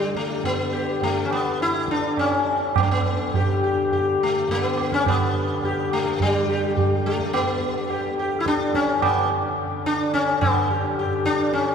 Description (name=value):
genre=indian classical, Hindustani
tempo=105 BPM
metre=4/4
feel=straight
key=G raga yaman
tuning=A4 = 440 Hz
part: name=sitar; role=melody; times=0.0-11.7 s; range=G3 to G4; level=-22 LUFS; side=left 2 dB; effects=none
part: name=pedal harmonium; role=drone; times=0.0-11.7 s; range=G2 to D3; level=-30 LUFS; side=left 2 dB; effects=none
part: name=tabla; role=percussion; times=0.0-11.7 s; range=none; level=-26 LUFS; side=right 4 dB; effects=none
room=wet cathedral reverb, RT60 5.9 s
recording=recorded in a church or concert hall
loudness=-20 LUFS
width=side -7 dB against mid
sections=0.0-11.7 A section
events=speeding up 0.0-11.7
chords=none